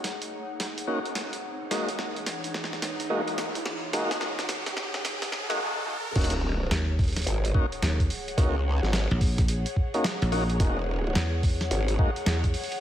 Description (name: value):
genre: glitch hop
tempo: 108 BPM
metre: 4/4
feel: swing 63% on 16ths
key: Eb phrygian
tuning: A4 = 439 Hz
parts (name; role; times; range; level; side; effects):
- boom bap sampler-style drum kit; drums; 0.0-12.8 s; crash cymbal, hi-hat, snare drum; -32 LUFS; equal; high-pass filter on hats, small room ambience, high-pass filter on snare, high-pass filter on cymbals
- riser and sub drop; sound effects; 0.0-8.4 s; none; -37 LUFS; right 1 dB; none
- airy breathy pad; texture; 0.0-12.8 s; E3 to Gb5; -36 LUFS; left 1 dB; chorus, sidechain pumping
- tonewheel organ; stabs; 0.9-12.1 s; G#3 to Gb4; -31 LUFS; left 1 dB; overdrive, slow rotary speaker, vintage 12-bit sampler grit, sidechain pumping, analog delay
- growl bass; bass; 6.2-12.0 s; Eb1 to Db2; -26 LUFS; equal; chorus
- electronic kick drum; drums; 6.2-12.5 s; none; -24 LUFS; equal; small room ambience
- dry thumbed slap bass; bass; 6.7-12.5 s; Bb1 to E2; -26 LUFS; equal; none
room: moderate lush hall reverb, RT60 1.8 s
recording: dreamy mix soaked in reverb, high-pass filter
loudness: -25 LUFS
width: side -11 dB against mid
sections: 0.0-6.2 A section; 6.2-12.8 B section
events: build-up 0.0-6.2; drum fill 0.0-5.6; riser 0.0-6.2; drop 6.2-12.8; impact 6.2-8.4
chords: 0.0 Ebm7; 1.7 Emaj9#11; 6.2 Ebm7; 10.6 Emaj9#11